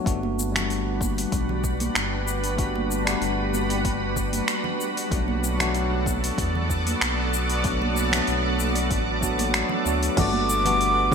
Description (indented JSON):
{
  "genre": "sunset chillout",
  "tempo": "95 BPM",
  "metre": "4/4",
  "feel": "swing 53% on 16ths",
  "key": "G major",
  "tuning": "A4 = 441 Hz",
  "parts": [
    { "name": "tine electric piano", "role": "accompaniment", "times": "0.0-11.1 s", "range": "F#3 to F#4", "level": "-28 LUFS", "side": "left 1 dB", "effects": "auto-pan, ping-pong delay" },
    { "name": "shimmering ambient pad", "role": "sustained chords", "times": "0.7-11.1 s", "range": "G3 to D5", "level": "-27 LUFS", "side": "equal", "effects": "chorus, built-in reverb" },
    { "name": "round analog bass", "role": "bass", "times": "0.1-11.1 s", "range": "G1 to E2", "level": "-28 LUFS", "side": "equal", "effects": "tube saturation" },
    { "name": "deep house drum kit", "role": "drums", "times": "0.1-11.1 s", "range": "congas, crash cymbal, finger snaps, hi-hat, shaker", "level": "-28 LUFS", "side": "equal", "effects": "overdrive, gated reverb" },
    { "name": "electronic kick drum", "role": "drums", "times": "0.1-11.1 s", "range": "none", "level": "-28 LUFS", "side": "equal", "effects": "overdrive" },
    { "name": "congas", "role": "percussion", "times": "0.2-11.1 s", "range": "none", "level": "-35 LUFS", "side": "right 3 dB", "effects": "none" },
    { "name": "silver concert flute", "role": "melody", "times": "10.2-11.1 s", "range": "D6", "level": "-22 LUFS", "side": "right 1 dB", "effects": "none" }
  ],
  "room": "moderate plate reverb, RT60 2.3 s",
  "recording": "bright 1980s-style digital production",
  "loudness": "-21 LUFS",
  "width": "side -6 dB against mid",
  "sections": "0.0-10.2 A section",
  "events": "none",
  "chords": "0.1 Gmaj7; 5.1 Bm7; 10.2 Gmaj7",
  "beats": "| 0.07 0.70 1.33 1.96 | 2.59 3.22 3.86 4.49 | 5.12 5.75 6.38 7.01 | 7.64 8.28 8.91 9.54 | 10.17 10.80"
}